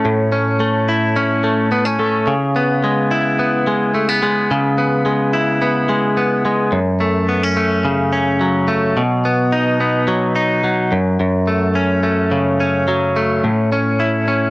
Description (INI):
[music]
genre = indie pop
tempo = 108 BPM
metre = 4/4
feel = straight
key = F# dorian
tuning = A4 = 440 Hz
[part]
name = direct-recorded clean electric guitar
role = solo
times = 0.0-14.5 s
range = F#2 to E4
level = -14 LUFS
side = equal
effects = cassette tape
[sound]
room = moderate small room reverb, RT60 0.5 s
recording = home recording on cassette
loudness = -14 LUFS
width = side -20 dB against mid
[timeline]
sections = 0.0-6.7 A section; 6.7-14.5 B section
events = none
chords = 0.0 A; 2.3 C#m7; 6.7 F#m; 9.0 B; 10.9 F#m; 13.4 A